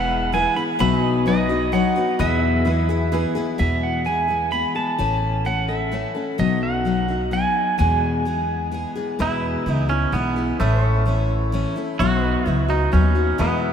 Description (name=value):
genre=honky-tonk and classic country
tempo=129 BPM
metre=3/4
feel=straight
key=E major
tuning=A4 = 440 Hz
part: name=pedal steel guitar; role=melody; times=0.0-8.7 s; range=D#5 to B5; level=-23 LUFS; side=right 2 dB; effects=none
part: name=bright concert grand piano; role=accompaniment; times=0.0-3.5 s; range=D#4 to C#5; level=-31 LUFS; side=right 7 dB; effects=none
part: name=picked steel-string acoustic guitar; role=accompaniment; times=0.0-13.7 s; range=E2 to A4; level=-23 LUFS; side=left 4 dB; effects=none
part: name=pedal steel guitar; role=sustained chords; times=0.0-3.6, 9.2-13.7 s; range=B4 to E5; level=-30 LUFS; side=left 2 dB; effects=wide subtle chorus
part: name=upright bass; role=bass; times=0.0-13.7 s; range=E1 to E2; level=-23 LUFS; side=equal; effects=none
part: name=twangy electric guitar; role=second line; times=9.2-13.7 s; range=A3 to F#4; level=-24 LUFS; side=right 5 dB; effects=tape echo
room=wet cathedral reverb, RT60 5.7 s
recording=in a vast, echoing space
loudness=-18 LUFS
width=side -8 dB against mid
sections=0.0-3.6 A section; 3.6-9.2 B section; 9.2-13.7 C section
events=clean electric guitar solo 9.2-13.7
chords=0.0 E; 0.8 B; 2.2 E; 5.0 A; 6.4 B; 7.8 E; 10.6 A; 12.0 B